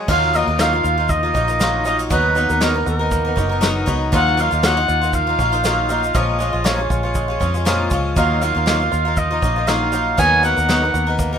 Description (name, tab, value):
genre	acoustic pop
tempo	119 BPM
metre	4/4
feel	swing 55% on 16ths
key	Eb minor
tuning	A4 = 440 Hz
part	picked twelve-string acoustic guitar	accompaniment	0.0-11.4 s	Bb2 to A#4	-21 LUFS	left 3 dB	none
part	bluegrass banjo	arpeggios	0.0-11.4 s	F3 to Gb4	-27 LUFS	right 7 dB	none
part	warm clarinet	melody	0.1-11.2 s	A#4 to Ab5	-19 LUFS	right 2 dB	none
part	vintage muted fingered electric bass	bass	0.1-11.4 s	F#1 to F2	-22 LUFS	equal	none
part	vintage brush drum kit	drums	0.1-11.3 s	crash cymbal, kick drum, shaker, snare drum	-23 LUFS	equal	none
room	light reverb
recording	minimal, uncompressed stereo recording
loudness	-15 LUFS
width	side -8 dB against mid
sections	0.1-11.4 A section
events	none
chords	0.1 Ebmadd9; 2.1 Bmaj7/D#; 4.1 Ebmadd9; 6.1 Bbm7; 8.2 Ebmadd9; 10.2 Bmaj7/D#